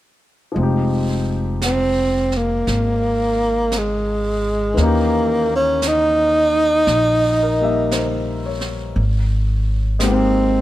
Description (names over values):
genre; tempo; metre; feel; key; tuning
jazz ballad; 57 BPM; 4/4; swing 69% on 8ths; F minor; A4 = 440 Hz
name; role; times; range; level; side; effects
warm concert grand piano; accompaniment; 0.5-10.6 s; Fb3 to Fb5; -23 LUFS; left 3 dB; none
upright bass; bass; 0.6-10.6 s; F1 to Eb2; -21 LUFS; equal; none
jazz brush drum kit; drums; 0.6-10.6 s; brushed snare drum, hi-hat, snare drum; -30 LUFS; right 3 dB; none
breathy tenor saxophone; melody; 1.6-10.6 s; Ab3 to Eb4; -17 LUFS; right 1 dB; none
room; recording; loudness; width
light reverb; none; -16 LUFS; side -15 dB against mid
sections
0.6-10.6 A section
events
none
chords
0.6 Fm7; 4.8 Eb7b9; 9.0 Abmaj7